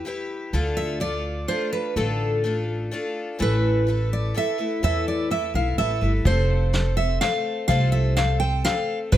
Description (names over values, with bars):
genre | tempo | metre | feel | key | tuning
folk | 126 BPM | 3/4 | straight | unclear | A4 = 440 Hz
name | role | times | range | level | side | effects
picked twelve-string acoustic guitar | accompaniment | 0.0-9.2 s | A2 to C5 | -28 LUFS | left 2 dB | none
upright bass | bass | 0.5-9.2 s | F1 to E2 | -23 LUFS | equal | none
picked steel-string acoustic guitar | melody | 0.8-9.2 s | A4 to G5 | -25 LUFS | right 1 dB | slapback echo
vintage brush drum kit | drums | 6.3-9.2 s | hi-hat, kick drum, snare drum | -24 LUFS | equal | none
room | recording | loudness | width
little or no reverb | close, detailed microphones | -21 LUFS | side -12 dB against mid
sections
0.5-9.2 A section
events
none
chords
0.0 Em; 0.5 Dm; 3.4 Asus2; 6.3 F